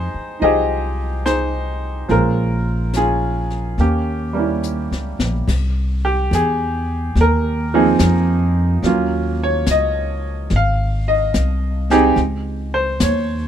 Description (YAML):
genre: jazz ballad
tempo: 72 BPM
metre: 4/4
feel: swing 68% on 8ths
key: unclear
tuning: A4 = 439 Hz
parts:
  - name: clear baby grand piano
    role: accompaniment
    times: 0.0-13.5 s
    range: F3 to G5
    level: -19 LUFS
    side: right 1 dB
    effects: none
  - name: upright bass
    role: bass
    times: 0.0-13.5 s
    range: Ab1 to F2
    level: -19 LUFS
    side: equal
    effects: none
  - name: jazz brush drum kit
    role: drums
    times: 0.4-13.5 s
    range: brushed snare drum, crash cymbal, hi-hat, kick drum, snare drum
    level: -26 LUFS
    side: left 4 dB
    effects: none
room: little or no reverb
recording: minimal, uncompressed stereo recording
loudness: -16 LUFS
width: side -9 dB against mid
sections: 0.0-5.5 A section; 5.5-13.5 B section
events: drum fill 4.6-5.5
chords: 0.0 Fm9; 2.1 Bbm7; 3.8 Eb7b9; 5.5 Ab69; 8.8 Ebm7; 10.5 Ab; 12.2 Dbmaj7sus2